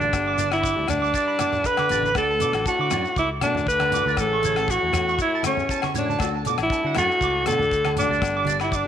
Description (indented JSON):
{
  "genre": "highlife guitar band",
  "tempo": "119 BPM",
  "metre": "4/4",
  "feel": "straight",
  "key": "D major",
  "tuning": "A4 = 435 Hz",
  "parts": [
    { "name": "bright alto saxophone", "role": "melody", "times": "0.0-8.9 s", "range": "C#4 to B4", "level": "-22 LUFS", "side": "equal", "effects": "none" },
    { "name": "brilliant trombone", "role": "second line", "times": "0.0-8.9 s", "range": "E2 to D3", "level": "-34 LUFS", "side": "left 10 dB", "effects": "none" },
    { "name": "nylon-string guitar", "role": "accompaniment", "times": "0.0-8.9 s", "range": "E3 to G4", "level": "-34 LUFS", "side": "left 12 dB", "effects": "none" },
    { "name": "electric guitar at the edge of break-up", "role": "arpeggios", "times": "0.0-8.8 s", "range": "A4 to D6", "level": "-29 LUFS", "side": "right 11 dB", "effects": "lush chorus" },
    { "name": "fingered electric bass", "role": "bass", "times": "0.0-8.8 s", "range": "G1 to D3", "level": "-30 LUFS", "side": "equal", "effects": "none" },
    { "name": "shekere", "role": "percussion", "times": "0.0-8.9 s", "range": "none", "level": "-34 LUFS", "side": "left 6 dB", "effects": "none" },
    { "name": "damped 70s drum kit", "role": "drums", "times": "0.1-8.8 s", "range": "hi-hat, kick drum, rim click", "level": "-31 LUFS", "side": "left 2 dB", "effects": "none" },
    { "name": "agogo bells", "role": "percussion", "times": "0.1-8.7 s", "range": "none", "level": "-34 LUFS", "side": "left 9 dB", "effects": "none" },
    { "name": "congas", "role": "percussion", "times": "0.4-8.6 s", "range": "none", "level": "-33 LUFS", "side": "right 6 dB", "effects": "none" }
  ],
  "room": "moderate plate reverb, RT60 1.8 s, small room ambience",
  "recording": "1960s-style stereo with parts hard left and right",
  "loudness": "-20 LUFS",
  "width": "side -9 dB against mid",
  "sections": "0.0-8.9 A section",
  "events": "none",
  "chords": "0.1 G; 2.2 D; 4.2 A; 6.2 D; 8.2 G",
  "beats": "| 0.14 0.65 1.15 1.66 | 2.16 2.67 3.17 3.68 | 4.18 4.69 5.19 5.70 | 6.20 6.71 7.21 7.71 | 8.22 8.72"
}